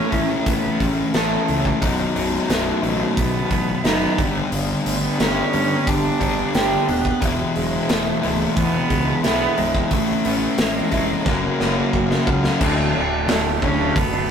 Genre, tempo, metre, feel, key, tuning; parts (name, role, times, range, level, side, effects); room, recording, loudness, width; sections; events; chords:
quiet-loud alternative rock; 89 BPM; 4/4; straight; A4 = 441 Hz
clear cello; melody; 0.0-14.3 s; E3 to D4; -26 LUFS; right 4 dB
electric guitar through a small old amp; arpeggios; 0.0-14.3 s; B1 to A4; -25 LUFS; right 3 dB; digital delay
fuzz guitar; riff; 0.0-14.3 s; B1 to A4; -22 LUFS; left 3 dB; distortion
growling fingered electric bass; bass; 0.1-14.3 s; B0 to A2; -28 LUFS; equal; overdrive
big rock drum kit; drums; 0.1-14.1 s; crash cymbal, hi-hat, kick drum, snare drum; -23 LUFS; equal
light reverb; rough rehearsal-room recording, tube saturation; -17 LUFS; side -7 dB against mid
0.0-12.6 A section; 12.6-14.3 B section
drum fill 11.3-12.6
0.0 A; 1.8 B; 4.2 G; 7.2 E; 9.9 A; 11.3 F#; 12.6 D